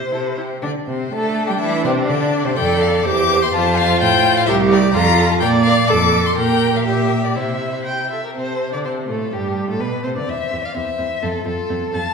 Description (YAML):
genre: quick classical-period movement for string quartet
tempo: 125 BPM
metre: 2/4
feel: straight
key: F major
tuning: A4 = 439 Hz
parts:
  - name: rich violin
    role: second line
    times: 0.0-12.1 s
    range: C4 to A5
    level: -24 LUFS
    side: left 2 dB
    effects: none
  - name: clear cello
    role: bass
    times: 0.0-12.0 s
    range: C2 to A3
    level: -20 LUFS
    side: right 3 dB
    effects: none
  - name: warm violin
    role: melody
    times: 0.1-12.1 s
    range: D4 to D6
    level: -22 LUFS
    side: left 7 dB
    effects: none
  - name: rich viola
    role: accompaniment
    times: 0.1-12.0 s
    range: G3 to G5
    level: -21 LUFS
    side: right 2 dB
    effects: none
room: wet recital hall reverb, RT60 1.5 s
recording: heard from further back in the room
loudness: -15 LUFS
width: side -5 dB against mid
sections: 0.6-8.4 A section; 8.4-12.1 B section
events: none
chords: 0.0 C; 0.6 Csus2; 1.1 G5; 1.6 C; 2.6 F; 3.1 C/E; 3.5 F; 4.5 C7(no3); 5.0 F; 5.4 Bb; 5.9 F; 6.4 Gm/Bb; 7.4 C; 8.4 Amadd11; 9.3 G; 10.3 C/E; 11.2 F